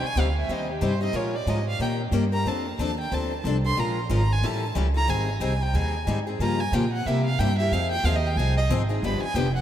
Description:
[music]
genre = acoustic string swing (jazz manouche)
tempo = 183 BPM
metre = 4/4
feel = swing 59% on 8ths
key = C minor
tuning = A4 = 440 Hz
[part]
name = warm violin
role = melody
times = 0.0-9.6 s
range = G4 to C6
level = -29 LUFS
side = right 2 dB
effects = none
[part]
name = picked steel-string acoustic guitar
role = accompaniment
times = 0.0-9.5 s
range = C3 to Bb4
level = -28 LUFS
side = left 4 dB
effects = none
[part]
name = upright bass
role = bass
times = 0.0-9.6 s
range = F1 to C3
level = -25 LUFS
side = right 1 dB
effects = none
[sound]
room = moderate cathedral reverb, RT60 6.4 s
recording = in a vast, echoing space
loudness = -22 LUFS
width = side -10 dB against mid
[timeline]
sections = 0.0-9.6 A section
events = violin solo 0.0-9.6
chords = 0.0 Cm; 1.1 Bbm7; 1.8 Eb7; 2.5 F6; 3.8 Bbm7; 4.4 A7; 5.1 Abmaj7; 6.4 Gm7b5; 7.1 C7; 7.7 Fm7; 9.0 G7

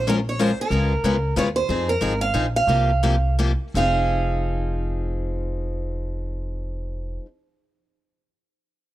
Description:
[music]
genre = acoustic string swing (jazz manouche)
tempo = 158-186 BPM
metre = 3/4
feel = swing 61% on 8ths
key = F minor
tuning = A4 = 437 Hz
[part]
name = picked steel-string acoustic guitar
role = melody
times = 0.0-7.2 s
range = Bb4 to F5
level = -23 LUFS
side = right 4 dB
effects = none
[part]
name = upright bass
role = bass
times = 0.0-7.2 s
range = F1 to F2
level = -24 LUFS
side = equal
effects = none
[part]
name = picked steel-string acoustic guitar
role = accompaniment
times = 0.1-7.3 s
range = C3 to Bb4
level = -25 LUFS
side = left 3 dB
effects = none
[sound]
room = small room ambience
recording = dry, close 1970s-style studio recording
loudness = -20 LUFS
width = side -14 dB against mid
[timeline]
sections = 0.0-3.7 A section; 3.7-6.0 B section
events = slowing down 1.7-3.7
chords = 0.0 Bbm7; 0.7 Db13; 1.7 Fm7; 2.7 C7sus4; 3.7 Fm7

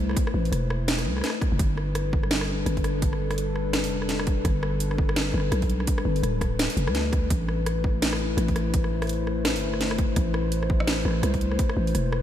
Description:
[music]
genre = half-time drum and bass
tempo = 168 BPM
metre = 4/4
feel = swing 59% on 16ths, half-time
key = A minor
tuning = A4 = 440 Hz
[part]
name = dark analog pad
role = sustained chords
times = 0.0-12.2 s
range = G3 to C5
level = -30 LUFS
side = left 3 dB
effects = chorus, sidechain pumping
[part]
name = growling 808-style bass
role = bass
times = 0.0-12.2 s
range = D1 to D2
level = -26 LUFS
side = equal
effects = none
[part]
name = drum and bass drum kit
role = drums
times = 0.1-12.2 s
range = hi-hat, rim click, snare drum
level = -29 LUFS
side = right 1 dB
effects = overdrive, studio reverb
[part]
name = electronic kick drum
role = drums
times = 0.2-11.7 s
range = none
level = -25 LUFS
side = equal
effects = overdrive, studio reverb
[sound]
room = light reverb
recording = none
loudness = -22 LUFS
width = side -11 dB against mid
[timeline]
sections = 0.0-12.2 A section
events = none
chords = 0.0 Am; 1.6 G; 7.3 Am7

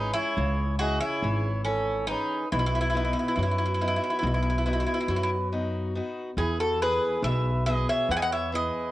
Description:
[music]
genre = greek folk, Greek bouzouki band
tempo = 140 BPM (eighths)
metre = 9/8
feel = straight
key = E major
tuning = A4 = 444 Hz
[part]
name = Greek bouzouki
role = melody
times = 0.0-8.9 s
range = C#4 to G#5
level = -28 LUFS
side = equal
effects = cassette tape
[part]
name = mellow accordion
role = second line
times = 0.0-8.9 s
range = E4 to E5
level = -32 LUFS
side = right 2 dB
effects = cassette tape
[part]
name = picked acoustic archtop guitar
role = accompaniment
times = 0.0-8.9 s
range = B2 to G#4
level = -32 LUFS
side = left 2 dB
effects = cassette tape
[part]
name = upright bass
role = bass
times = 0.0-8.7 s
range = G#1 to F#2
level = -29 LUFS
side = equal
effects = none
[sound]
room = light reverb, small room reverb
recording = home recording on cassette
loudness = -24 LUFS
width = side -16 dB against mid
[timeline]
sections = 0.0-6.4 A section; 6.4-8.9 A section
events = none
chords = 0.0 C#m; 2.5 B; 6.4 E

